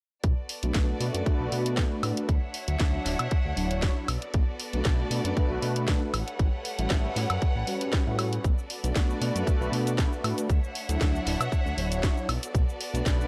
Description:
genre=nu-disco, nu disco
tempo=117 BPM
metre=4/4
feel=swing 54% on 16ths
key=B minor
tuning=A4 = 439 Hz
part: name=warm studio violin section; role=sustained chords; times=0.2-13.3 s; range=G3 to F#5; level=-38 LUFS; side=equal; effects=sidechain pumping
part: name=fat analog bass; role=bass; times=0.2-13.2 s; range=D1 to B2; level=-32 LUFS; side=equal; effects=none
part: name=electronic kick drum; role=drums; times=0.2-13.2 s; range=none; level=-28 LUFS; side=equal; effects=none
part: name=house drum kit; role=drums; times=0.2-13.3 s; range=hi-hat, shaker, snare drum, woodblock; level=-36 LUFS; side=equal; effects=none
part: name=mellow synth brass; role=accompaniment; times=0.6-13.3 s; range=F#3 to E5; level=-35 LUFS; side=equal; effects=chorus, sidechain pumping, tape echo
room=digital ambience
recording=dry, gritty hardware recording, cassette tape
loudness=-27 LUFS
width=mono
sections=0.2-13.3 A section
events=none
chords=0.2 Bm7; 2.3 Dmaj9; 4.1 Bm7; 6.1 A13; 8.4 Bm7; 10.5 Dmaj9; 12.3 Bm7

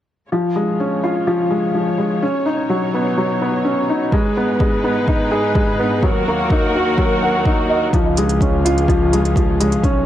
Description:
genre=piano and strings electronica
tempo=126 BPM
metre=4/4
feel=straight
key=unclear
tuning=A4 = 439 Hz
part: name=rich studio string section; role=sustained chords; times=0.3-10.1 s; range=D#2 to C#5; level=-24 LUFS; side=left 1 dB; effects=sidechain pumping
part: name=felt-muted upright piano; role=riff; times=0.3-10.1 s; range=E#3 to F#5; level=-17 LUFS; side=equal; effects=tape echo
part: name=electronic kick drum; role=drums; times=4.1-9.9 s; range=none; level=-18 LUFS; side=equal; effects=none
part: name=clear studio double bass section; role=bass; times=7.9-10.1 s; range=B1 to C#2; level=-20 LUFS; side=equal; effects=sidechain pumping
part: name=electronic hi-hat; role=drums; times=7.9-9.9 s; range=none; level=-27 LUFS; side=right 3 dB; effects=none
room=light reverb, studio reverb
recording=none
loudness=-15 LUFS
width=side -12 dB against mid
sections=0.3-7.9 A section; 7.9-10.1 B section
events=fade-in on string section 0.3-7.9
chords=0.3 C#; 2.2 Badd9; 4.1 G#m; 6.0 D#m; 7.9 C#

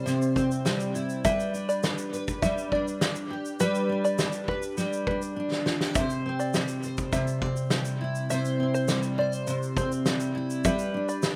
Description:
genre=acoustic pop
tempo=102 BPM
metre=4/4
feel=straight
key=C major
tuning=A4 = 440 Hz
part: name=picked steel-string acoustic guitar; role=accompaniment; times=0.0-11.4 s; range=C3 to C5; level=-30 LUFS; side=equal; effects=double-tracked, slapback echo
part: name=loose indie drum kit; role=drums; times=0.1-11.4 s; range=kick drum, shaker, snare drum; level=-32 LUFS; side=equal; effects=none
part: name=open-back banjo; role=arpeggios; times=0.4-11.4 s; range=B4 to E5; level=-32 LUFS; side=equal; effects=none
room=little or no reverb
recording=none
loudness=-28 LUFS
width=mono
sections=0.0-11.4 A section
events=drum fill 5.4-6.0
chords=0.0 C; 1.2 G; 6.0 C; 10.7 G

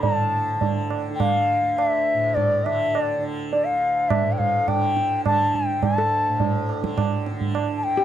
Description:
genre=indian classical, Hindustani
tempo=104 BPM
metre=5/4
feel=straight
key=D raga kafi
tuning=A4 = 441 Hz
part: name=mellow bansuri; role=melody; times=0.0-8.0 s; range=D5 to A5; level=-21 LUFS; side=left 2 dB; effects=none
part: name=steel pan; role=second line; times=0.0-0.2, 6.0-8.0 s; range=G4 to D5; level=-28 LUFS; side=left 4 dB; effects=none
part: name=tanpura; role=drone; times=0.0-8.0 s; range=D2 to D3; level=-29 LUFS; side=right 2 dB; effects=none
part: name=tabla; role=percussion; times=0.0-7.8 s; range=none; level=-24 LUFS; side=right 5 dB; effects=none
room=little or no reverb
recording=dry, close 1970s-style studio recording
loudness=-20 LUFS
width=side -10 dB against mid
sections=0.0-8.0 A section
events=speeding up 0.0-8.0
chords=none

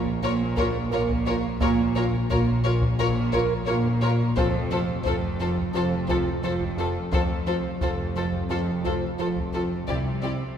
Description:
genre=cinematic, suspense film score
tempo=87 BPM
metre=4/4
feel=straight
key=unclear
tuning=A4 = 443 Hz
part: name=fat analog bass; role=riff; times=0.0-10.4 s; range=F2 to Bb3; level=-28 LUFS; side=right 4 dB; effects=none
part: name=dark symphonic double bass section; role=bass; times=0.0-10.5 s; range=F1 to C2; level=-30 LUFS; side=right 1 dB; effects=none
part: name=rich symphonic cello section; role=bass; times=0.0-10.5 s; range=F2 to C3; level=-30 LUFS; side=right 2 dB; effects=none
part: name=analog drone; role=drone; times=0.0-10.6 s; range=Bb1 to F2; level=-33 LUFS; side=left 1 dB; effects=chorus
part: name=taiko ensemble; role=drums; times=0.1-10.5 s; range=none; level=-31 LUFS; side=left 1 dB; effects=none
part: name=warm chamber violin section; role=melody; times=0.2-10.3 s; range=C5 to D5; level=-33 LUFS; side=left 5 dB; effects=none
part: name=warm symphonic violin section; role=second line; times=0.2-10.3 s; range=G4 to Bb4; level=-33 LUFS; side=left 4 dB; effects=none
part: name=dark symphonic viola section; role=accompaniment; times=0.2-10.3 s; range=E4 to F4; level=-33 LUFS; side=left 2 dB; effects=none
room=wet concert hall reverb, RT60 2.2 s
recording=recorded in a church or concert hall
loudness=-22 LUFS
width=side -8 dB against mid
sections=0.0-10.6 A section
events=none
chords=0.0 Bbm; 4.4 F; 9.9 Cadd9

